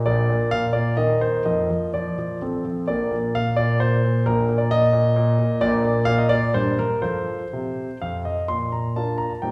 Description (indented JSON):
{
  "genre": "classical-period piano sonatina",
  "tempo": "121-133 BPM",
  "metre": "3/4",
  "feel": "rubato",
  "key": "Bb major",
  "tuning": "A4 = 439 Hz",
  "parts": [
    { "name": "clear concert grand piano", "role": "solo", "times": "0.0-9.5 s", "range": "Bb1 to C6", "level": "-22 LUFS", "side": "equal", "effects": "none" }
  ],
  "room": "wet recital hall reverb, RT60 1.4 s",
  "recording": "heard from further back in the room",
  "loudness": "-22 LUFS",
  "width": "mono",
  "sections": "0.0-8.5 A section; 8.5-9.5 B section",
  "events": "none",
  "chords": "0.1 N.C.; 1.0 Eb5; 1.4 Bb/F; 2.4 F; 2.9 N.C.; 6.5 Gm; 7.0 F; 8.5 Bb"
}